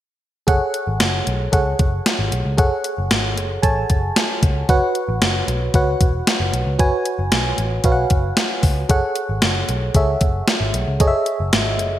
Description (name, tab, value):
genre	1980s-style pop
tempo	114 BPM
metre	4/4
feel	straight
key	F# minor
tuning	A4 = 439 Hz
part	FM electric piano with auto-pan	accompaniment	0.5-12.0 s	F#4 to A5	-21 LUFS	right 1 dB	none
part	vintage muted picked electric bass	bass	0.5-12.0 s	E1 to C#2	-22 LUFS	equal	none
part	gated 80s digital drum machine	drums	0.5-11.9 s	hi-hat, kick drum, snare drum	-18 LUFS	equal	gated reverb, gated reverb snare, overdrive
room	moderate lush hall reverb, RT60 2.1 s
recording	bright 1980s-style digital production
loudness	-16 LUFS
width	side -12 dB against mid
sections	0.5-12.0 A section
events	none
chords	0.5 F#madd9; 4.7 Bsus2; 8.9 F#madd9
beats	| 0.48 1.00 1.53 2.06 | 2.58 3.11 3.64 4.16 | 4.69 5.21 5.74 6.27 | 6.79 7.32 7.85 8.37 | 8.90 9.43 9.95 10.48 | 11.01 11.53